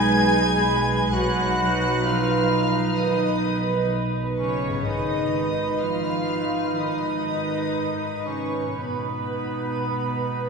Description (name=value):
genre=cinematic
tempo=56-65 BPM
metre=4/4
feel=rubato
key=unclear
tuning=A4 = 439 Hz
part: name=warm studio violin section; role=melody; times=0.0-10.5 s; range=Cb6 to G#6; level=-31 LUFS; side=left 3 dB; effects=none
part: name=clear clarinet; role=second line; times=0.0-10.5 s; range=Eb4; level=-32 LUFS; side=left 2 dB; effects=none
part: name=dark studio violin section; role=second line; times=0.0-10.5 s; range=Cb5 to G#5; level=-31 LUFS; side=left 1 dB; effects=none
part: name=mellow cor anglais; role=second line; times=0.0-10.5 s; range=Cb4 to G#4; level=-32 LUFS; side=right 1 dB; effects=none
part: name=mellow hollow concert flute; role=second line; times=0.0-10.5 s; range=Cb6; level=-31 LUFS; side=right 1 dB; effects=none
part: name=warm studio viola section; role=accompaniment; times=0.0-10.5 s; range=D#4 to B4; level=-28 LUFS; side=right 4 dB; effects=none
part: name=mellow French horn section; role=sustained chords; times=0.0-10.5 s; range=Cb4 to G#4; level=-31 LUFS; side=left 2 dB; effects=none
part: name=concert harp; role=arpeggios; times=0.0-8.7 s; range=Ab2 to Cb5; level=-36 LUFS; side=left 4 dB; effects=none
part: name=dark studio double bass section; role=bass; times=0.0-10.5 s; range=Ab1 to B1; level=-30 LUFS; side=right 2 dB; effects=none
part: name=warm studio cello section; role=bass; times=0.0-10.5 s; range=Cb3 to G#3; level=-30 LUFS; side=right 2 dB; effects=none
room=wet concert hall reverb, RT60 2.2 s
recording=heard from further back in the room, small room ambience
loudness=-21 LUFS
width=side -5 dB against mid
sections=0.0-10.5 A section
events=none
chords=0.0 B6; 4.9 Abm